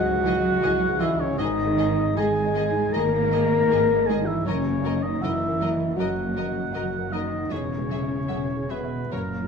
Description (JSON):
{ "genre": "cinematic", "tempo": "78 BPM", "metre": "4/4", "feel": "rubato", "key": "G# minor", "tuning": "A4 = 440 Hz", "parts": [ { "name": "warm oboe", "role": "second line", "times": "0.0-9.5 s", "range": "A#4 to A#5", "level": "-31 LUFS", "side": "right 2 dB", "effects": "none" }, { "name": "felt-muted upright piano", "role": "accompaniment", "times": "0.0-9.5 s", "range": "C#2 to F#5", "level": "-32 LUFS", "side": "equal", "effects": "none" }, { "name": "mellow French horn section", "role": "sustained chords", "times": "0.0-9.5 s", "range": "A#3 to A#4", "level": "-25 LUFS", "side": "left 3 dB", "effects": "none" }, { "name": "dark symphonic cello section", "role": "bass", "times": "0.0-9.5 s", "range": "A#2 to A#3", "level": "-30 LUFS", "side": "right 3 dB", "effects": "none" }, { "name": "warm symphonic double bass section", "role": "bass", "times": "0.0-9.5 s", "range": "E1 to C#2", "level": "-30 LUFS", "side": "right 4 dB", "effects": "none" }, { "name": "rich symphonic viola section", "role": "accompaniment", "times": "0.2-9.2 s", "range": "D#3 to F#3", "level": "-38 LUFS", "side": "right 3 dB", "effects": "none" }, { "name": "warm symphonic violin section", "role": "melody", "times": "0.3-9.2 s", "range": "C#5 to E5", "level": "-37 LUFS", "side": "left 3 dB", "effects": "none" }, { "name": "warm symphonic violin section", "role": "second line", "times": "0.3-9.2 s", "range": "G#4 to A#4", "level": "-39 LUFS", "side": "left 3 dB", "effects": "none" } ], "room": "wet scoring stage reverb, RT60 1.5 s", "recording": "minimal, uncompressed stereo recording", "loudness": "-21 LUFS", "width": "side -6 dB against mid", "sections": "0.0-9.5 A section", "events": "none", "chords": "0.0 C#madd9; 1.4 G#sus2; 4.5 D#m7/F#; 7.5 Eadd9", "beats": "0.62 | 1.39 2.18 2.94 3.69 | 4.45 5.22 5.97 6.73 | 7.51 8.30 9.12" }